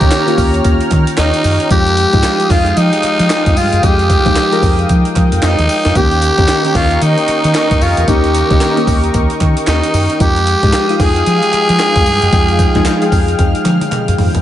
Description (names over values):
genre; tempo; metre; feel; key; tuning
R&B, new jack swing; 113 BPM; 4/4; swing 61% on 16ths; unclear; A4 = 440 Hz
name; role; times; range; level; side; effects
growling tenor saxophone; melody; 0.0-13.9 s; Eb4 to Ab4; -15 LUFS; equal; ping-pong delay
warm analog keys; accompaniment; 0.0-14.4 s; Eb3 to G5; -18 LUFS; left 2 dB; chorus
lush unison pad; sustained chords; 0.0-14.4 s; Ab3 to F6; -20 LUFS; equal; chorus
deep dub fingered electric bass; bass; 0.0-14.4 s; Db2 to F3; -15 LUFS; equal; none
breakbeat sampler-style drum kit; drums; 0.0-14.4 s; handclaps, hi-hat, kick drum, snare drum, tambourine, toms; -16 LUFS; equal; none
group handclap; percussion; 0.1-14.1 s; none; -31 LUFS; right 6 dB; none
room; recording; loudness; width
little or no reverb; nothing above 11.0 kHz; -10 LUFS; side -12 dB against mid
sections
0.0-14.4 A section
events
drum fill 13.4-14.4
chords
0.0 Eb7; 1.7 Fm9; 6.0 Eb7; 10.2 Fm9